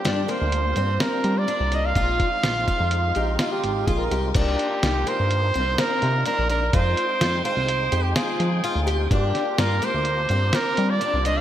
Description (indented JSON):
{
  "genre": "progressive instrumental, band music in an uneven meter",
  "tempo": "126 BPM",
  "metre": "5/4",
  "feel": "straight",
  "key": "unclear",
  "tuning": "A4 = 440 Hz",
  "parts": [
    { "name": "warm trumpet", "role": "melody", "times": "0.0-11.4 s", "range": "G4 to F5", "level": "-25 LUFS", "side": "right 2 dB", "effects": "none" },
    { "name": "tonewheel organ", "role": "accompaniment", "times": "0.0-11.4 s", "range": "G3 to G5", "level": "-32 LUFS", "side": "left 1 dB", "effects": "chorus vibrato, slow rotary speaker, slapback echo" },
    { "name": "fingerpicked twelve-string acoustic guitar", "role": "arpeggios", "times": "0.0-11.4 s", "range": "Bb3 to G4", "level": "-28 LUFS", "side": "left 4 dB", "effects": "tape echo" },
    { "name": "chorused synth bass", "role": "bass", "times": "0.1-11.4 s", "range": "Ab1 to G3", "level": "-24 LUFS", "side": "equal", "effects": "none" },
    { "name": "lo-fi sampler-style drum kit", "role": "drums", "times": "0.1-11.4 s", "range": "crash cymbal, hi-hat, kick drum, snare drum", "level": "-26 LUFS", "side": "equal", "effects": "none" },
    { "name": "breathy alto saxophone", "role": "second line", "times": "2.4-4.4 s", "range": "Eb4 to Bb4", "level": "-30 LUFS", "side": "right 3 dB", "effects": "slapback echo" }
  ],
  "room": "moderate lush hall reverb, RT60 2.7 s",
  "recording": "big arena sound",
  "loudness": "-20 LUFS",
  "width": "side -11 dB against mid",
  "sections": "0.0-4.4 A section; 4.4-11.4 A section",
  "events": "none",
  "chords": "0.0 Gm7; 2.0 Bb9sus4; 4.4 Cm11; 6.7 Fm9; 9.1 Gm7"
}